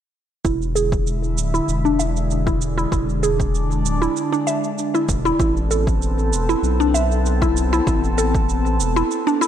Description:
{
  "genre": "organic downtempo",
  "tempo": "97 BPM",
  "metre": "4/4",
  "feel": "swing 54% on 16ths",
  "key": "unclear",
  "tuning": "A4 = 439 Hz",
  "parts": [
    { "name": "airy breathy pad", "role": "sustained chords", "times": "0.4-9.5 s", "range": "D3 to A4", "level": "-25 LUFS", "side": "left 1 dB", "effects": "chorus, phaser, sidechain pumping" },
    { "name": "mallet-like synth pluck", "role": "arpeggios", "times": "0.4-9.5 s", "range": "D4 to E5", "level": "-22 LUFS", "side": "equal", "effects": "chorus, phaser, ping-pong delay" },
    { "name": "round analog bass", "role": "bass", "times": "0.4-9.0 s", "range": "D1 to B1", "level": "-21 LUFS", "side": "equal", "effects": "none" },
    { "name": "electronic kick drum", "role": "drums", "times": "0.4-8.5 s", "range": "none", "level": "-24 LUFS", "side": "equal", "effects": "overdrive" },
    { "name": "cabasa", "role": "drums", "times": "0.5-9.5 s", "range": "none", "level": "-30 LUFS", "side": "right 11 dB", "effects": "none" }
  ],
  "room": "light reverb, digital ambience",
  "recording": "none",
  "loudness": "-17 LUFS",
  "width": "side -10 dB against mid",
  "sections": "0.4-9.5 A section",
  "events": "filter sweep on analog synth bass 0.4-9.5; filter sweep on synth pluck 0.4-9.5",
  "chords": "0.4 E7; 5.4 Amadd9",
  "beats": "| 0.45 1.07 1.68 2.30 | 2.92 3.54 4.16 4.78 | 5.40 6.01 6.63 7.25 | 7.87 8.49 9.11"
}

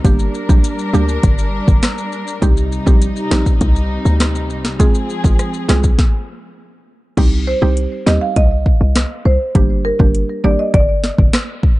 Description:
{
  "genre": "dancehall",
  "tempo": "101 BPM",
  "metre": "4/4",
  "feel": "straight",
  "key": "C minor",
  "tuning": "A4 = 440 Hz",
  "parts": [
    { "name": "mallet-like synth pluck", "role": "accompaniment", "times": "0.0-10.7 s", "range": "G3 to Ab4", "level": "-21 LUFS", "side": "right 3 dB", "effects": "chorus, sidechain pumping" },
    { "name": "dark studio string section", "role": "sustained chords", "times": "0.0-6.0 s", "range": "C3 to Bb4", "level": "-23 LUFS", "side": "left 1 dB", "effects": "sidechain pumping" },
    { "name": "short 808-style bass", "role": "bass", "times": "0.0-11.3 s", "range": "F1 to Eb2", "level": "-16 LUFS", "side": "equal", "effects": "none" },
    { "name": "afro-pop drum kit", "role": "drums", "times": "0.0-11.8 s", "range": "crash cymbal, hi-hat, kick drum, rim click, snare drum", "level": "-14 LUFS", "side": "equal", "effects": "none" },
    { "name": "maracas", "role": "percussion", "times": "0.1-6.0 s", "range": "none", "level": "-34 LUFS", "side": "left 8 dB", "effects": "none" },
    { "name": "marimba with medium mallets", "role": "melody", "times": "7.5-11.2 s", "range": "Bb4 to F5", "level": "-20 LUFS", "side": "right 1 dB", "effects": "digital delay" }
  ],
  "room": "small room ambience",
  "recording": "dark, warm production, nothing above 10.4 kHz",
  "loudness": "-12 LUFS",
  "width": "side -18 dB against mid",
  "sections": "0.0-7.2 A section; 7.2-11.8 B section",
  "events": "stop 6.0-7.2",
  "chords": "0.0 Gm; 2.4 Cm; 4.8 Fm; 7.2 Cm; 9.6 Gm",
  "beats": "| 0.05 0.64 1.23 1.83 | 2.42 3.02 3.61 4.20 | 4.80 5.39 5.99 6.58 | 7.17 7.77 8.36 8.96 | 9.55 10.14 10.74 11.33"
}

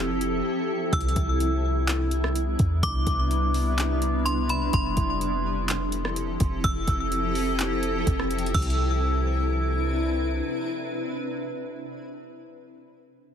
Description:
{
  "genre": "hip hop, atmospheric cloud-rap",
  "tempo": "126 BPM",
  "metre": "4/4",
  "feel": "half-time",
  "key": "C major",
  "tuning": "A4 = 440 Hz",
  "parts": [
    { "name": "metallic FM bell", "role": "melody", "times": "0.0-9.9 s", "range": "B5 to E6", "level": "-31 LUFS", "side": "left 1 dB", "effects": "chorus, ping-pong delay" },
    { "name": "granular cloud pad", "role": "sustained chords", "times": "0.0-11.7 s", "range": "C3 to B4", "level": "-28 LUFS", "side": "equal", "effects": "built-in reverb, sidechain pumping" },
    { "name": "clean 808-style bass", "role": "bass", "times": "0.0-10.4 s", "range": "F1 to E2", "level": "-26 LUFS", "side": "equal", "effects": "none" },
    { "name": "smooth R&B drum kit", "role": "drums", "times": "0.2-8.8 s", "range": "crash cymbal, handclaps, hi-hat, kick drum, rim click", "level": "-28 LUFS", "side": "equal", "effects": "overdrive" }
  ],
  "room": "digital ambience",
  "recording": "heavily compressed radio sound, multiband compression",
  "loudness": "-23 LUFS",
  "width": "side -8 dB against mid",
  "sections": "0.0-8.5 A section; 8.5-12.4 B section",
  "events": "silent gap 0.5-0.9",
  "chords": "0.0 Fmaj7; 0.9 Cmaj7; 4.7 Fmaj7; 8.5 Cmaj7",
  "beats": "0.45 | 0.93 1.40 1.88 2.35 | 2.83 3.31 3.78 4.26 | 4.74 5.21 5.69 6.17 | 6.64 7.12 7.59 8.07 | 8.54 9.02 9.50 9.97 | 10.45 10.93 11.40"
}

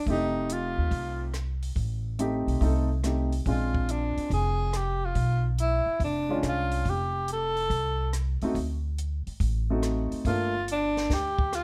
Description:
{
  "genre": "jazz, small-group swing and bop",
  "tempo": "141 BPM",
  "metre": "4/4",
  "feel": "swing 68% on 8ths",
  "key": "F mixolydian",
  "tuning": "A4 = 440 Hz",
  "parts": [
    { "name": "breathy tenor saxophone", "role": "melody", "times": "0.0-11.6 s", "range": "D4 to A4", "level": "-31 LUFS", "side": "equal", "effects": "none" },
    { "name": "warm grand piano", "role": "accompaniment", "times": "0.1-10.5 s", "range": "Ab3 to A4", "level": "-33 LUFS", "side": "equal", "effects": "none" },
    { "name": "upright bass", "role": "bass", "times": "0.1-11.6 s", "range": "F1 to Eb2", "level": "-31 LUFS", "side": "equal", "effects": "none" },
    { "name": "compact cocktail drum kit", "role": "drums", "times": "0.1-11.6 s", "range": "hi-hat, kick drum, rim click, snare drum", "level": "-35 LUFS", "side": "equal", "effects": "none" }
  ],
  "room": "light reverb",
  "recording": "none",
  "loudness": "-28 LUFS",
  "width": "mono",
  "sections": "0.0-11.6 A section",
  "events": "none",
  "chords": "0.1 F7; 3.5 Bb7; 5.2 Bdim7; 6.9 F; 8.6 D7b9; 10.3 Gm7",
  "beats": "| 0.07 0.50 0.92 1.35 | 1.77 2.19 2.62 3.04 | 3.47 3.89 4.32 4.74 | 5.16 5.59 6.01 6.44 | 6.86 7.28 7.71 8.13 | 8.56 8.98 9.41 9.83 | 10.26 10.68 11.10 11.53"
}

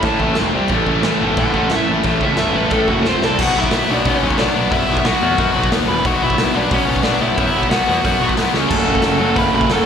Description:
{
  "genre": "punk rock",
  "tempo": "180 BPM",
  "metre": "4/4",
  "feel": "straight",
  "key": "unclear",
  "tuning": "A4 = 440 Hz",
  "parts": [
    { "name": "biting lead guitar", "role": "melody", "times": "0.0-9.9 s", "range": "C#4 to B5", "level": "-20 LUFS", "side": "right 1 dB", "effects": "overdrive, slapback echo" },
    { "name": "distorted electric guitar", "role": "riff", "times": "0.0-9.9 s", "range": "E2 to C#4", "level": "-20 LUFS", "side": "left 12 dB", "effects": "overdrive" },
    { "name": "distorted electric guitar", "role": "riff", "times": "0.0-3.4, 8.7-9.9 s", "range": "A2 to C5", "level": "-20 LUFS", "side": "right 12 dB", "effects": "distortion" },
    { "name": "fuzz picked electric bass", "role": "bass", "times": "0.0-9.8 s", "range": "E1 to A2", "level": "-21 LUFS", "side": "right 1 dB", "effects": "overdrive" },
    { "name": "raw garage drum kit", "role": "drums", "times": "0.0-9.8 s", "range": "crash cymbal, hi-hat, kick drum, snare drum", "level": "-21 LUFS", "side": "right 1 dB", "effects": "none" },
    { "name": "crunchy overdriven guitar", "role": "riff", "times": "3.4-9.9 s", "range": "E2 to C#4", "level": "-23 LUFS", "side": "right 1 dB", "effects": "none" }
  ],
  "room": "small room ambience",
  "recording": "live gig heard through the venue's PA, club reverb",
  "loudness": "-14 LUFS",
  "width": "side -7 dB against mid",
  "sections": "0.0-3.4 A section; 3.4-9.9 B section",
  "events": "lead electric guitar solo 0.0-3.4; drum fill 3.1-3.4, 8.5",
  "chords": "0.4 F5; 0.5 C5; 0.7 A; 3.1 F5; 3.2 C5; 3.4 Bm; 5.9 E5; 6.1 Bm; 8.5 C#5; 8.7 F#m",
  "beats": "0.04 0.38 | 0.71 1.05 1.38 1.72 | 2.05 2.39 2.72 3.06 | 3.39 3.72 4.06 4.39 | 4.72 5.06 5.39 5.72 | 6.05 6.39 6.72 7.05 | 7.38 7.71 8.04 8.37 | 8.70 9.04 9.37 9.70"
}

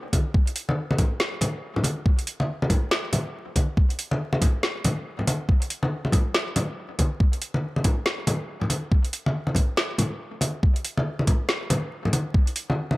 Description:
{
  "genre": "dubstep",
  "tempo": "140 BPM",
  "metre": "4/4",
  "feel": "swing 60% on 16ths, half-time",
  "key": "none",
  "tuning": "none",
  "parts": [
    { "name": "electronic kick drum", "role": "drums", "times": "0.1-12.4 s", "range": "none", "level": "-20 LUFS", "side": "equal", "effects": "overdrive" },
    { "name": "garage drum kit", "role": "drums", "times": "0.1-12.7 s", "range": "hi-hat, snare drum", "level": "-27 LUFS", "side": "equal", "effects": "overdrive" },
    { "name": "congas", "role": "percussion", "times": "0.1-13.0 s", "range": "none", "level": "-26 LUFS", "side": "left 1 dB", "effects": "dub echo" }
  ],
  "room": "light reverb",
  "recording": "vinyl crackle",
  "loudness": "-22 LUFS",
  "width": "side -20 dB against mid",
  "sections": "0.0-13.0 A section",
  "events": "break 10.2-10.6",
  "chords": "none",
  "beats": "| 0.34 0.77 1.20 1.63 | 2.06 2.49 2.92 3.34 | 3.77 4.20 4.63 5.06 | 5.49 5.92 6.34 6.77 | 7.20 7.63 8.06 8.49 | 8.92 9.34 9.77 10.20 | 10.63 11.06 11.49 11.92 | 12.34 12.77"
}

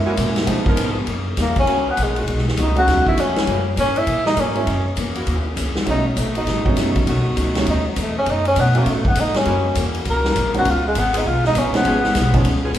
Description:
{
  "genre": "jazz, big band swing",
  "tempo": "200 BPM",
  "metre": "4/4",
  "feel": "swing 63% on 8ths",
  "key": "F# mixolydian",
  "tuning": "A4 = 440 Hz",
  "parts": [
    { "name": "clear baby grand piano", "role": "accompaniment", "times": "0.0-12.4 s", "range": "E#3 to D#5", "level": "-25 LUFS", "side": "right 3 dB", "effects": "none" },
    { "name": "picked steel-string acoustic guitar", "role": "accompaniment", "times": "0.0-12.8 s", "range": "F#2 to E#4", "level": "-27 LUFS", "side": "left 3 dB", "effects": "none" },
    { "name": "upright bass", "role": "bass", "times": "0.0-12.8 s", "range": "F#1 to C#3", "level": "-22 LUFS", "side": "equal", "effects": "none" },
    { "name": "clear saxophone section", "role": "sustained chords", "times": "0.1-12.7 s", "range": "D#3 to A#4", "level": "-29 LUFS", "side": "equal", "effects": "none" },
    { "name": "swinging big-band drum kit", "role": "drums", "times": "0.2-12.8 s", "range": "hi-hat, kick drum, ride cymbal, snare drum", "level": "-23 LUFS", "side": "left 1 dB", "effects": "none" },
    { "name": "warm tenor saxophone", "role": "melody", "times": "1.4-12.4 s", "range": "F#3 to A#4", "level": "-20 LUFS", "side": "equal", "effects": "none" }
  ],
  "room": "wet recital hall reverb, RT60 1.5 s",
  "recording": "recorded in a church or concert hall, lossy compression artefacts",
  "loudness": "-16 LUFS",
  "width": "side -11 dB against mid",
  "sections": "0.0-1.1 A section; 1.1-12.8 A section",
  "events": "grand piano solo 0.0-1.1; tenor saxophone solo 1.1-12.8",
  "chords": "0.5 C#7; 1.1 F#7; 2.3 B7; 3.5 F#7; 5.9 B7; 9.5 F#7; 10.7 C#7",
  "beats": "0.18 0.48 0.78 | 1.08 1.38 1.68 1.98 | 2.28 2.58 2.88 3.18 | 3.48 3.78 4.08 4.38 | 4.68 4.98 5.28 5.58 | 5.87 6.17 6.47 6.77 | 7.07 7.37 7.67 7.97 | 8.27 8.57 8.87 9.16 | 9.46 9.76 10.06 10.36 | 10.66 10.96 11.26 11.55 | 11.85 12.15 12.45 12.75"
}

